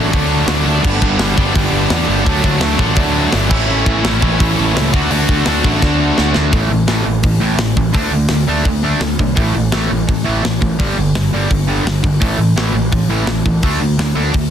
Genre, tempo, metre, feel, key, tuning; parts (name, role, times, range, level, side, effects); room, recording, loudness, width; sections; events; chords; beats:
punk rock; 169 BPM; 4/4; straight; A mixolydian; A4 = 440 Hz
cranked stack guitar; riff; 0.0-14.5 s; G2 to F#4; -16 LUFS; right 1 dB; overdrive
high-gain distorted guitar; riff; 0.0-6.4 s; G2 to F#4; -19 LUFS; left 1 dB; distortion
fuzz picked electric bass; bass; 0.0-14.5 s; G1 to E2; -18 LUFS; equal; overdrive
tight metal drum kit; drums; 0.1-14.4 s; crash cymbal, hi-hat, kick drum, snare drum; -18 LUFS; equal; soft clipping on kick
little or no reverb; dense, heavily limited modern master; -12 LUFS; side -9 dB against mid
0.0-6.5 A section; 6.5-14.5 B section
drum fill 5.8-6.5
0.0 D; 0.8 G; 2.3 D; 3.5 A; 4.9 D; 6.5 A5; 8.0 D5; 9.4 A5; 10.8 G5; 12.2 A5; 13.6 D5
0.13 0.49 | 0.84 1.20 1.55 1.91 | 2.27 2.62 2.98 3.33 | 3.69 4.04 4.40 4.75 | 5.11 5.46 5.82 6.17 | 6.53 6.88 7.24 7.59 | 7.95 8.30 8.66 9.02 | 9.37 9.73 10.08 10.44 | 10.79 11.15 11.50 11.86 | 12.21 12.57 12.92 13.28 | 13.63 13.99 14.34